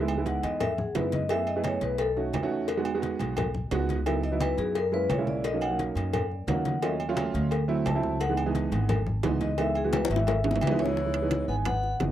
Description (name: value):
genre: Afro-Cuban jazz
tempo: 174 BPM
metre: 4/4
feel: straight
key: C# minor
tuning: A4 = 441 Hz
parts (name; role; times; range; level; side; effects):
- warm upright piano; accompaniment; 0.0-12.1 s; E3 to G#4; -30 LUFS; right 5 dB; none
- upright bass; bass; 0.0-12.1 s; F#1 to F#2; -31 LUFS; equal; none
- agogo bells and timbales; percussion; 0.1-12.1 s; none; -36 LUFS; right 6 dB; none
- congas; percussion; 0.1-12.1 s; none; -34 LUFS; left 2 dB; none
- vibraphone with medium hard mallets; melody; 0.3-2.1, 4.2-12.0 s; G#4 to A5; -32 LUFS; left 2 dB; tape echo
- cowbell and bongos; percussion; 0.3-12.1 s; none; -34 LUFS; left 6 dB; none
- warm tenor saxophone; second line; 10.6-12.0 s; E3 to B3; -37 LUFS; left 6 dB; none
room: light reverb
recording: dry, close 1970s-style studio recording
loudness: -25 LUFS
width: side -12 dB against mid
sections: 0.0-11.0 A section; 11.0-12.1 B section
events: vibraphone solo 0.0-11.0; drum fill 9.9-11.0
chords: 0.0 C#m7; 1.3 F#m11; 2.0 B9; 2.7 Emaj9; 4.1 C#m11; 4.8 F#9; 5.4 Bmaj9; 6.8 D#m7b5; 7.5 D9; 8.2 C#m7